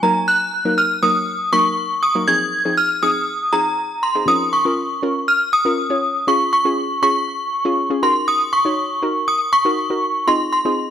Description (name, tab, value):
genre	pop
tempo	120 BPM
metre	4/4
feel	straight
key	Bb minor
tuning	A4 = 439 Hz
part	synth chime	melody	0.0-10.9 s	Bb5 to Ab6	-16 LUFS	equal	ensemble chorus, analog delay
part	soft round pluck	accompaniment	0.0-10.9 s	F3 to Eb5	-22 LUFS	left 1 dB	chorus
room	digital ambience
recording	dry, gritty hardware recording, cassette tape, high-pass filter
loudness	-16 LUFS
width	side -9 dB against mid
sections	0.0-4.3 A section; 4.3-10.9 B section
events	build-up 0.0-4.3; drop 4.3-10.9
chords	0.0 Ebm; 2.3 Fm7; 4.3 Bbm; 6.3 Db; 8.0 Ebm; 10.3 Fm7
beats	| 0.28 0.78 1.28 1.78 | 2.28 2.78 3.28 3.78 | 4.28 4.78 5.28 5.78 | 6.28 6.78 7.28 7.78 | 8.28 8.78 9.28 9.78 | 10.28 10.78